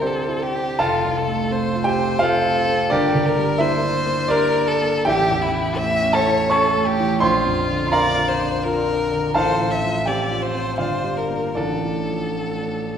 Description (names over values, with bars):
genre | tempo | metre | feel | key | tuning
classical, romantic duo for violin and grand piano | 84 BPM | 3/4 | uneven beats, rubato | unclear | A4 = 440 Hz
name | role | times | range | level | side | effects
warm violin | melody | 0.0-13.0 s | E4 to E5 | -22 LUFS | left 2 dB | none
warm concert grand piano | accompaniment | 0.0-13.0 s | F1 to C#6 | -19 LUFS | right 1 dB | none
room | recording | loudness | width
wet scoring stage reverb, RT60 2.0 s | heard from further back in the room | -18 LUFS | side -8 dB against mid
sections
0.0-13.0 A section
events
none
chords
0.0 C/D; 0.8 F; 2.9 Gm; 5.1 A7; 7.2 Bb; 9.4 F/A; 10.8 Gm7; 11.6 Dm/A